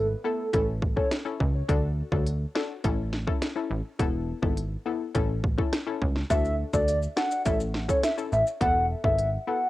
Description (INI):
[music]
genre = dancehall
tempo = 104 BPM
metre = 4/4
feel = straight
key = A major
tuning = A4 = 440 Hz
[part]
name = hollow clarinet-like synth lead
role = melody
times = 0.0-1.1, 6.3-9.7 s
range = A4 to F#5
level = -26 LUFS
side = equal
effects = chorus, cassette tape, tape echo
[part]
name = plucky analog bass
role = bass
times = 0.0-9.4 s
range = E1 to D2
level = -28 LUFS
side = equal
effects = none
[part]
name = downlifter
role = sound effects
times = 0.1-1.7 s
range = none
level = -61 LUFS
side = right 1 dB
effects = none
[part]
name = analog pluck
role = accompaniment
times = 0.2-9.6 s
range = B3 to A4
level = -32 LUFS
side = left 6 dB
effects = chorus, cassette tape
[part]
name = island pop drum kit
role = drums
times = 0.5-9.3 s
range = hi-hat, kick drum, rim click, snare drum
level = -28 LUFS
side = equal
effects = overdrive, cassette tape
[part]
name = maracas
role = percussion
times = 6.3-8.6 s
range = none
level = -44 LUFS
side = left 4 dB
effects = none
[sound]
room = little or no reverb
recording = home recording on cassette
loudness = -24 LUFS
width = side -16 dB against mid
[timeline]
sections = 0.0-9.7 A section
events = none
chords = 0.0 Esus4; 0.5 A; 1.7 D; 2.8 A; 4.0 Esus4; 5.1 A; 6.3 D; 7.5 A; 8.6 Esus4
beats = 0.53 1.11 | 1.69 2.26 2.84 3.42 | 4.00 4.57 5.15 5.73 | 6.30 6.88 7.46 8.03 | 8.61 9.19